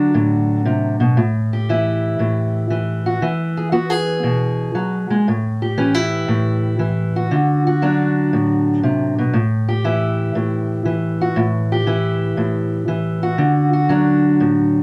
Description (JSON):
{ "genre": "blues", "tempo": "118 BPM", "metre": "4/4", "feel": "swing 68% on 8ths", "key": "unclear", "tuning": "A4 = 439 Hz", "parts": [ { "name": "fingerpicked steel-string acoustic guitar", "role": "solo", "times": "0.0-14.8 s", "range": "A2 to G#4", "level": "-18 LUFS", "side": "equal", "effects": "none" } ], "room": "light reverb", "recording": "close, detailed microphones", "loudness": "-18 LUFS", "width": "mono", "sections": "0.0-5.3 A section; 5.3-14.8 B section", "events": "none", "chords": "0.0 D7; 1.2 A5; 3.2 E; 5.3 A7(no3); 7.3 D7; 9.3 A5; 13.4 D", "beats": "0.15 0.67 | 1.18 1.69 2.20 2.71 | 3.22 3.73 4.25 4.76 | 5.27 5.78 6.29 6.79 | 7.30 7.81 8.32 8.83 | 9.34 9.85 10.35 10.86 | 11.37 11.88 12.38 12.89 | 13.40 13.90 14.41" }